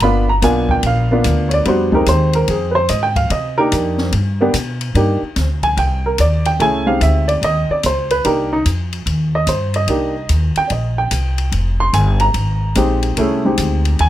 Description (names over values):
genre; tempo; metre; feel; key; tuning
jazz piano trio; 146 BPM; 4/4; swing 65% on 8ths; C minor; A4 = 440 Hz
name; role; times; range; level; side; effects
warm baby grand piano; melody; 0.0-14.1 s; G3 to C6; -16 LUFS; right 1 dB; none
upright bass; bass; 0.0-14.1 s; F1 to C3; -17 LUFS; equal; none
open jazz drum kit; drums; 0.0-14.1 s; hi-hat, kick drum, ride cymbal, snare drum; -25 LUFS; left 3 dB; none
room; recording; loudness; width
little or no reverb; close, detailed microphones; -14 LUFS; side -13 dB against mid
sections
0.0-5.0 A section; 5.0-14.1 A section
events
grand piano solo 0.0-14.1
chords
0.0 G7#9; 1.7 Fm7; 3.3 Cm7; 4.1 G; 5.0 Cm7; 6.6 Fm13/C (rootless); 8.2 Cm7; 11.5 Fm7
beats
| 0.02 0.43 0.84 1.25 | 1.66 2.07 2.48 2.89 | 3.31 3.72 4.13 4.54 | 4.95 5.36 5.77 6.18 | 6.59 7.01 7.42 7.83 | 8.24 8.65 9.06 9.47 | 9.88 10.29 10.71 11.12 | 11.53 11.94 12.35 12.76 | 13.17 13.58 13.99